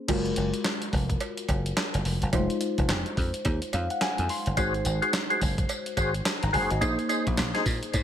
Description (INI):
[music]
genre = R&B, new jack swing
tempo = 107 BPM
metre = 4/4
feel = swing 61% on 16ths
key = unclear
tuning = A4 = 440 Hz
[part]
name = mellow FM electric piano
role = accompaniment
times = 0.0-8.0 s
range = Gb3 to C6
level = -31 LUFS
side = left 1 dB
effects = chorus, phaser
[part]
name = dry thumbed slap bass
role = bass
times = 0.1-8.0 s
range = F1 to Bb2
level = -28 LUFS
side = equal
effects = none
[part]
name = clean 12-bit digital drum machine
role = drums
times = 0.1-8.0 s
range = crash cymbal, handclaps, hi-hat, kick drum, snare drum, tambourine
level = -29 LUFS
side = equal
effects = none
[part]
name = cowbell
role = percussion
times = 0.1-8.0 s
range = none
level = -38 LUFS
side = right 5 dB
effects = none
[part]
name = percussive tonewheel organ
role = stabs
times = 4.6-7.7 s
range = Eb4 to C5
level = -28 LUFS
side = left 1 dB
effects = overdrive, chorus vibrato, slow rotary speaker, ping-pong delay
[sound]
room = digital ambience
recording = none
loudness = -24 LUFS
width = side -9 dB against mid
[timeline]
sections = 0.1-8.0 A section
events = FM electric piano fill 3.5-4.6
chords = 0.1 Gbmaj9; 2.3 Fm7; 4.6 Ab7; 6.8 Bb9sus4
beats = | 0.09 0.65 1.21 1.77 | 2.33 2.89 3.45 4.01 | 4.57 5.13 5.69 6.25 | 6.82 7.38 7.94